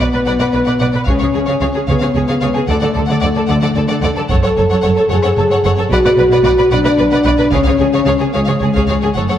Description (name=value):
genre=cinematic, epic orchestral film score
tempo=74 BPM (dotted quarters)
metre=6/8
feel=straight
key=unclear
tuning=A4 = 440 Hz
part: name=rich studio violin section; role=melody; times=0.0-9.3 s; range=C#5 to F#5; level=-25 LUFS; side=left 4 dB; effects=none
part: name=warm symphonic violin section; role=second line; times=0.0-9.4 s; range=G#4 to D5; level=-21 LUFS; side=left 2 dB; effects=none
part: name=warm symphonic viola section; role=accompaniment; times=0.0-9.4 s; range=G#4 to B4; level=-22 LUFS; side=right 1 dB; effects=none
part: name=dark French horn section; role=sustained chords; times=0.0-9.4 s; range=G#3 to A4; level=-15 LUFS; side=left 2 dB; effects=none
part: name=dark symphonic cello section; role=bass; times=0.0-9.4 s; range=F#2 to D3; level=-19 LUFS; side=right 2 dB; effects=none
part: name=rich symphonic double bass section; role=bass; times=0.0-9.2 s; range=F#1 to D2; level=-20 LUFS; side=right 2 dB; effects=none
part: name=taiko ensemble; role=drums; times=1.1-9.0 s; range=none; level=-20 LUFS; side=equal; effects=none
room=moderate concert hall reverb, RT60 1.9 s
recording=none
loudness=-11 LUFS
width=side -10 dB against mid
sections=0.0-9.4 A section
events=none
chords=0.0 Bm; 1.1 C#; 2.7 D; 4.3 F#m; 5.9 Bm; 7.5 C#